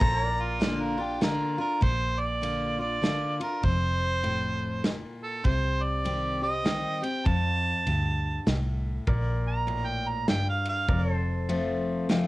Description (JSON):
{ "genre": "honky-tonk and classic country", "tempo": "99 BPM", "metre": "3/4", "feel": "swing 62% on 8ths", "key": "Bb major", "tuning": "A4 = 441 Hz", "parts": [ { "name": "picked steel-string acoustic guitar", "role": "accompaniment", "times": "0.0-12.3 s", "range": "F2 to G4", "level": "-31 LUFS", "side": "left 2 dB", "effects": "none" }, { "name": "pedal steel guitar", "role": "sustained chords", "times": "0.0-1.8, 9.1-12.3 s", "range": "A4 to D5", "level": "-36 LUFS", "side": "left 1 dB", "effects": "none" }, { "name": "vintage muted fingered electric bass", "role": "bass", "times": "0.0-12.3 s", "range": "F1 to F2", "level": "-30 LUFS", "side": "equal", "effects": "none" }, { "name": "natural country drum kit", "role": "drums", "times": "0.0-12.3 s", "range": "kick drum, ride cymbal, snare drum", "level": "-28 LUFS", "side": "equal", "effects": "cassette tape" }, { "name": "mellow harmonica", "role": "second line", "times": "0.4-11.0 s", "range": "F4 to Bb5", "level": "-29 LUFS", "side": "right 2 dB", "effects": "none" } ], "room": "light reverb", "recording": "home recording on cassette", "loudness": "-25 LUFS", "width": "side -19 dB against mid", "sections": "0.0-1.8 A section; 1.8-9.1 B section; 9.1-12.3 C section", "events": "harmonica solo 1.8-9.1, 9.1-12.3", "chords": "0.0 Bb; 3.6 F; 5.4 Cm; 7.3 F; 9.1 Bb; 10.9 F" }